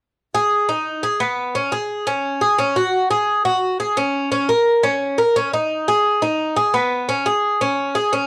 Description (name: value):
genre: latin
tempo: 173 BPM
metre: 4/4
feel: straight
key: G# minor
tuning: A4 = 440 Hz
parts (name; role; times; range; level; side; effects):
- Cuban tres; arpeggios; 0.3-8.3 s; B3 to A#4; -19 LUFS; equal; cassette tape
room: wet small room reverb, RT60 0.5 s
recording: home recording on cassette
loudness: -19 LUFS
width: mono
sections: 0.2-8.3 A section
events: none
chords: none